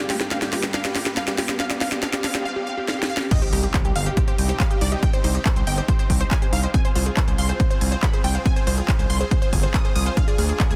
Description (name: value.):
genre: uplifting trance.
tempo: 140 BPM.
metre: 4/4.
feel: straight.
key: C harmonic minor.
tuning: A4 = 440 Hz.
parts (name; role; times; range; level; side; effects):
unison pluck; melody; 0.0-10.8 s; G4 to Eb6; -31 LUFS; equal; sidechain pumping, dub echo.
plucky unison lead; second line; 0.0-10.8 s; G4 to Eb6; -39 LUFS; equal; none.
supersaw pad; sustained chords; 0.0-10.8 s; G3 to G5; -37 LUFS; equal; sidechain pumping.
unison pluck; arpeggios; 0.0-10.8 s; C4 to Ab5; -36 LUFS; equal; sidechain pumping, dub echo.
riser and impact; sound effects; 0.0-5.0 s; none; -36 LUFS; equal; none.
techno drum kit; drums; 0.1-10.8 s; crash cymbal, handclaps, hi-hat, snare drum; -29 LUFS; equal; none.
electronic kick drum; drums; 3.3-10.7 s; none; -23 LUFS; equal; none.
gritty driven synth bass; bass; 3.5-10.8 s; G1 to D2; -25 LUFS; equal; sidechain pumping.
room: light reverb, digital ambience.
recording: dense, heavily limited modern master.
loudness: -21 LUFS.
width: mono.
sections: 0.0-3.3 A section; 3.3-10.8 B section.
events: build-up 0.0-3.3; drum fill 0.0-2.5, 2.9-3.3; riser 0.0-2.5; filter sweep on synth arpeggio sound 0.0-3.3; drop 3.3-10.8; impact 3.3-5.0.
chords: 0.0 G; 3.3 Cm; 6.7 Fm/C; 10.2 Ddim.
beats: 0.31 0.74 1.17 | 1.60 2.03 2.46 2.88 | 3.31 3.74 4.17 4.60 | 5.03 5.46 5.88 6.31 | 6.74 7.17 7.60 8.03 | 8.46 8.88 9.31 9.74 | 10.17 10.60.